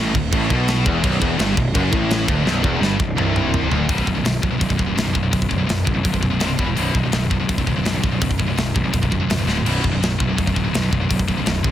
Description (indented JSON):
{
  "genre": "heavy metal",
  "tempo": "167 BPM",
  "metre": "4/4",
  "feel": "straight",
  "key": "B minor",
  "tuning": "A4 = 440 Hz",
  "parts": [
    { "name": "distorted electric guitar", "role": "riff", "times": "0.0-3.9 s", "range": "B1 to B2", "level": "-24 LUFS", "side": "right 2 dB", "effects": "distortion" },
    { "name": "scooped high-gain guitar", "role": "riff", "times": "0.0-11.7 s", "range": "B1 to E3", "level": "-22 LUFS", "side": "left 5 dB", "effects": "distortion" },
    { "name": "scooped high-gain guitar", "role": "riff", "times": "0.0-11.7 s", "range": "B1 to E3", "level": "-25 LUFS", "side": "right 8 dB", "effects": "distortion" },
    { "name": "fuzz picked electric bass", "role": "bass", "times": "0.0-11.7 s", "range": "B0 to B1", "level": "-24 LUFS", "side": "equal", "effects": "overdrive" },
    { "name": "tight metal drum kit", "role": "drums", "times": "0.1-11.7 s", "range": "crash cymbal, hi-hat, kick drum, snare drum, toms", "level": "-22 LUFS", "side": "equal", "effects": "none" }
  ],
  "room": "studio ambience",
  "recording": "dense, heavily limited modern master",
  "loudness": "-17 LUFS",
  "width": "side -11 dB against mid",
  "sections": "0.0-3.9 A section; 3.9-11.7 B section",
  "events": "drum fill 2.5-3.9, 9.5",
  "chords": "0.0 D5; 1.0 Bm; 3.9 B5; 6.4 C5; 6.6 E5; 6.8 B5; 9.5 D5; 9.7 B5"
}